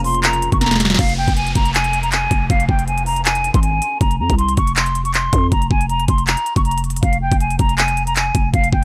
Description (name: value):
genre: hip hop, trap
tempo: 159 BPM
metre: 4/4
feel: half-time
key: F minor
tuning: A4 = 441 Hz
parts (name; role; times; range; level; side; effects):
- hollow concert flute; melody; 0.0-8.8 s; F5 to Db6; -22 LUFS; equal; low-pass filter
- dark concert grand piano; accompaniment; 0.0-1.0 s; F2 to F4; -37 LUFS; equal; none
- warbly tape-like pad; sustained chords; 0.0-1.0 s; Db3 to F4; -34 LUFS; equal; chorus, built-in reverb
- growling 808-style bass; bass; 0.0-8.8 s; F1 to F2; -23 LUFS; equal; none
- trap drum kit; drums; 0.0-8.8 s; crash cymbal, handclaps, hi-hat, kick drum, snare drum; -20 LUFS; equal; none
- downlifter; sound effects; 1.0-4.0 s; none; -33 LUFS; equal; none
room: little or no reverb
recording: none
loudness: -17 LUFS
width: mono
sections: 1.0-8.8 A section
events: drum fill 0.6-1.0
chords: 0.0 Bbm/F; 1.0 Fm; 4.0 Fsus4; 7.0 Fm